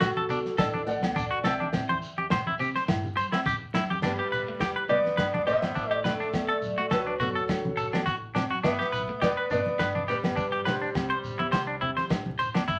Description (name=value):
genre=highlife guitar band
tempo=104 BPM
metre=4/4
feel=swing 54% on 16ths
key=G major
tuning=A4 = 441 Hz
part: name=fingerpicked old ladder-braced acoustic guitar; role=melody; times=0.0-12.4 s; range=F#4 to G5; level=-32 LUFS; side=equal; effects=none
part: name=clean electric guitar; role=accompaniment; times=0.0-12.7 s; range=A3 to E4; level=-41 LUFS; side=equal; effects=none
part: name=clean electric guitar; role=arpeggios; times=0.0-12.8 s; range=D4 to C5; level=-32 LUFS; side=equal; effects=none
part: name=crunchy breakbeat drum kit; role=drums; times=0.0-12.8 s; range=crash cymbal, kick drum, snare drum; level=-33 LUFS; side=equal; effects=none
part: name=agogo bells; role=percussion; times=0.0-12.7 s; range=none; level=-40 LUFS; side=equal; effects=none
part: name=shekere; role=percussion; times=0.0-12.8 s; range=none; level=-45 LUFS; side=equal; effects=none
part: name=congas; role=percussion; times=0.2-12.7 s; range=none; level=-40 LUFS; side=equal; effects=none
part: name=upright bass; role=bass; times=0.6-12.8 s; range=E1 to G3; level=-42 LUFS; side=equal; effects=none
part: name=raspy tenor saxophone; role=second line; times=4.0-12.4 s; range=F#3 to B3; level=-40 LUFS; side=equal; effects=none
room=wet club reverb, RT60 0.5 s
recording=vinyl crackle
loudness=-28 LUFS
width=mono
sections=0.0-4.0 A section; 4.0-12.8 B section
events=none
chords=0.0 D; 1.7 C/E; 4.0 G; 6.3 D; 8.6 G; 11.0 Cadd9